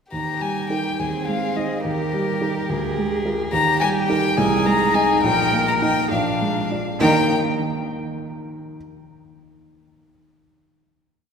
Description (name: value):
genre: quick classical-period movement for piano quartet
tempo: 69 BPM (dotted quarters)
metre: 6/8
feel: straight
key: Eb major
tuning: A4 = 440 Hz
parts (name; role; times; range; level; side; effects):
- warm violin; melody; 0.1-7.3 s; Bb4 to Bb5; -23 LUFS; left 4 dB; none
- warm violin; second line; 0.1-7.3 s; D4 to Bb4; -27 LUFS; left 3 dB; none
- dark baby grand piano; accompaniment; 0.1-8.8 s; Bb1 to Eb5; -23 LUFS; right 2 dB; none
- rich cello; second line; 1.0-7.3 s; Eb3 to Bb4; -26 LUFS; right 3 dB; none
room: wet church reverb, RT60 2.8 s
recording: recorded in a church or concert hall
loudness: -18 LUFS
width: side -6 dB against mid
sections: 0.1-7.0 A section; 7.0-8.8 final chord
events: none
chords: 0.1 Eb; 1.0 Ab/Eb; 1.9 Eb; 2.7 Bb7/D; 3.5 Eb; 4.4 Ab/C; 5.2 Eb/Bb; 6.1 Bb7; 7.0 Eb5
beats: | 0.13 0.99 | 1.85 2.69 | 3.53 4.38 | 5.24 6.11 | 7.00 7.88